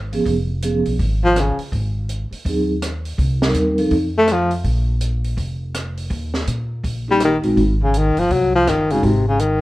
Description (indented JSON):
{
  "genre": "jazz, small-group swing and bop",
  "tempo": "164 BPM",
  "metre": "4/4",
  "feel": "swing 63% on 8ths",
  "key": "unclear",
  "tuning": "A4 = 440 Hz",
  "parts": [
    { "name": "upright bass", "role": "bass", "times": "0.0-9.6 s", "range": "F1 to Bb2", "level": "-21 LUFS", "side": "equal", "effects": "none" },
    { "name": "vibraphone with soft mallets", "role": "accompaniment", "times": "0.1-3.9, 7.1-9.0 s", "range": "F3 to Bb4", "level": "-19 LUFS", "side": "right 1 dB", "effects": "none" },
    { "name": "compact cocktail drum kit", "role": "drums", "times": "0.1-9.5 s", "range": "hi-hat, kick drum, rim click, snare drum", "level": "-26 LUFS", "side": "equal", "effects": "none" },
    { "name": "breathy baritone saxophone", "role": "melody", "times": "1.2-1.6, 4.2-4.5, 7.1-9.6 s", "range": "C3 to A3", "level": "-16 LUFS", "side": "left 1 dB", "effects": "none" }
  ],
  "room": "light reverb",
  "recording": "worn, warbling old tape, cassette tape, warbly pitch drift",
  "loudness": "-16 LUFS",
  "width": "side -17 dB against mid",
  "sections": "0.0-9.6 A section",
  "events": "none",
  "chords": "0.0 Db7; 1.7 Ab7; 3.2 Cm7; 3.9 F; 4.7 Bb5; 6.1 Eb5; 7.6 Ab"
}